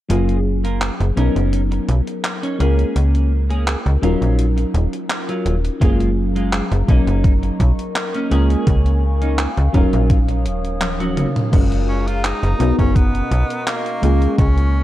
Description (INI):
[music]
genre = vaporwave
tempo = 84 BPM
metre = 4/4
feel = straight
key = Eb minor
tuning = A4 = 439 Hz
[part]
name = mellow FM electric piano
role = accompaniment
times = 0.1-14.8 s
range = Gb3 to F5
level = -22 LUFS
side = left 1 dB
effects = lush chorus, vintage 12-bit sampler grit, tape echo
[part]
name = clean electric guitar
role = riff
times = 0.1-11.3 s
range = Gb3 to C#5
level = -27 LUFS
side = right 1 dB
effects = lush chorus, vintage 12-bit sampler grit, low-pass filter, tape echo
[part]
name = slap-like FM bass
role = bass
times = 0.1-14.8 s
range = Eb1 to Db2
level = -17 LUFS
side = equal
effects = none
[part]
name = gated 80s digital drum machine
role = drums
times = 0.1-14.7 s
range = crash cymbal, handclaps, hi-hat, toms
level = -25 LUFS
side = equal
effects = gated reverb, overdrive
[part]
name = warbly tape-like pad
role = sustained chords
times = 6.2-14.8 s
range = B2 to Eb6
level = -30 LUFS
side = left 2 dB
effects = chorus, built-in reverb
[part]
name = electronic kick drum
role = drums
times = 5.8-14.5 s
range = none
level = -16 LUFS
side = equal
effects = overdrive
[part]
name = breathy tenor saxophone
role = melody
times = 11.9-14.8 s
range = A#3 to F4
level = -25 LUFS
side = equal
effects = tape echo
[sound]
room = digital ambience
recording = dark, warm production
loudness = -15 LUFS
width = side -14 dB against mid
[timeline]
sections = 0.1-11.5 A section; 11.5-14.8 B section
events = drum fill 10.8-11.5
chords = 0.1 Gbmaj9; 1.2 Bmaj9; 2.6 Bbm7/Db; 4.0 Ebm9; 5.8 Gbmaj9; 6.9 Bmaj9; 8.3 Bbm7/Db; 9.7 Ebm9; 11.5 Gbmaj9; 12.6 Bmaj9; 14.0 Bbm7/Db